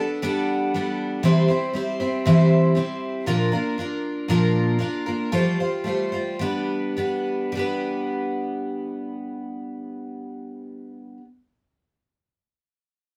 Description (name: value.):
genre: rock.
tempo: 101-119 BPM.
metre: 4/4.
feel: straight.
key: G mixolydian.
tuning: A4 = 440 Hz.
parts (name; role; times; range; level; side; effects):
picked twelve-string acoustic guitar; solo; 0.0-11.2 s; Bb2 to C5; -24 LUFS; equal; none.
room: moderate studio ambience, RT60 0.5 s.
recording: band playing live in one room.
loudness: -23 LUFS.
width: mono.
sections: 0.0-7.6 A section; 7.6-12.3 B section.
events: slowing down 3.3-7.6.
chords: 0.0 Gadd9; 1.3 C; 3.3 Bb; 5.3 Fadd9; 6.4 G.